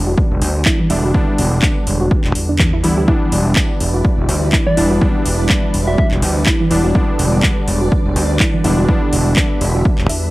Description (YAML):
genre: deep house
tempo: 124 BPM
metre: 4/4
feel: swing 56% on 16ths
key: E minor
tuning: A4 = 440 Hz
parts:
  - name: warm analog keys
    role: stabs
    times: 0.0-10.3 s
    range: D3 to E4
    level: -21 LUFS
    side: equal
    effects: chorus, vintage 12-bit sampler grit, analog delay
  - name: growling fingered electric bass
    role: bass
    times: 0.0-10.3 s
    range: E1 to E2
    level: -17 LUFS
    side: equal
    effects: overdrive, sidechain pumping
  - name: soft round pluck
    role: arpeggios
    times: 0.1-10.2 s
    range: E3 to E5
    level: -22 LUFS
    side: right 1 dB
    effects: chorus, sidechain pumping, tape echo
  - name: electronic kick drum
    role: drums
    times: 0.2-10.0 s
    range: none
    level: -16 LUFS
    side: equal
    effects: overdrive
  - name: house drum kit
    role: drums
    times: 0.4-10.2 s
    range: handclaps, hi-hat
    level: -21 LUFS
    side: equal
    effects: overdrive
  - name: soft string machine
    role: sustained chords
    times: 3.1-10.3 s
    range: G3 to E5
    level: -24 LUFS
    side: equal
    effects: ensemble chorus, sidechain pumping
  - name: soft struck synth lead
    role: melody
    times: 4.7-6.1 s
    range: D5 to E5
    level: -22 LUFS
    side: equal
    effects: chorus, vintage 12-bit sampler grit, tape echo
room: digital ambience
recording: dry, gritty hardware recording, vinyl crackle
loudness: -12 LUFS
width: side -18 dB against mid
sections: 0.0-10.3 A section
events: none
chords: 0.0 Em7